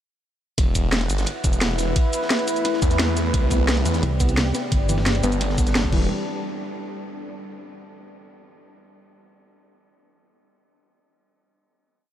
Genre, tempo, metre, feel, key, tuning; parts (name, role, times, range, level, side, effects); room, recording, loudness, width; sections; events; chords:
dark technical drum and bass; 174 BPM; 4/4; straight; E minor; A4 = 440 Hz
deep dark ambient pad; sustained chords; 1.1-6.1 s; G3 to F#5; -27 LUFS; equal; chorus, built-in reverb, sidechain pumping
snarling distorted saw bass; bass; 0.6-6.1 s; E1 to E2; -23 LUFS; equal; distortion, tube saturation, sidechain pumping
crunchy breakbeat drum kit; drums; 0.6-5.8 s; ride cymbal, snare drum; -35 LUFS; equal
drum and bass drum kit; drums; 0.6-6.0 s; cabasa, crash cymbal, hi-hat, snare drum; -26 LUFS; equal; small room ambience
electronic kick drum; drums; 0.6-6.0 s; -21 LUFS; equal; overdrive, small room ambience
soft round pluck; arpeggios; 3.5-6.1 s; E3 to B3; -29 LUFS; left 2 dB; chorus, sidechain pumping, analog delay
pulsing pluck wobble bass; bass; 4.0-5.2 s; G1 to C2; -22 LUFS; equal; chorus
light reverb, digital ambience; -19 LUFS; side -11 dB against mid
0.6-6.1 drop; 6.1-7.5 final hit
drop 0.6-6.1
0.6 E5; 2.0 A5; 3.3 Cadd9; 4.7 G; 5.9 E5; 6.1 N.C.